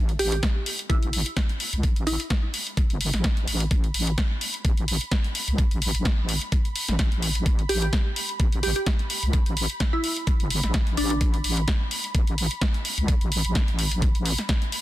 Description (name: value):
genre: bass house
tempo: 128 BPM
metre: 4/4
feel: swing 55% on 16ths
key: A minor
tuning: A4 = 440 Hz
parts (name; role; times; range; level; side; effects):
- wobble bass; bass; 0.0-14.4 s; G1 to C2; -26 LUFS; equal; chorus, tube saturation, sidechain pumping
- house drum kit; drums; 0.1-14.8 s; hi-hat, snare drum; -28 LUFS; equal; small room ambience
- glassy wavetable pluck; melody; 0.2-2.5, 7.7-11.2 s; D4 to G4; -29 LUFS; right 1 dB; chorus, cassette tape, digital delay
- ethereal airy pad; texture; 0.8-14.8 s; B5; -39 LUFS; right 2 dB; ensemble chorus, built-in reverb, sidechain pumping
- electronic kick drum; drums; 0.4-14.6 s; none; -23 LUFS; equal; small room ambience
room: digital ambience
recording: dense, heavily limited modern master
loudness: -22 LUFS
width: side -15 dB against mid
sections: 0.0-14.8 A section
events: fade-in on ambient pad 0.0-14.8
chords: 0.0 A5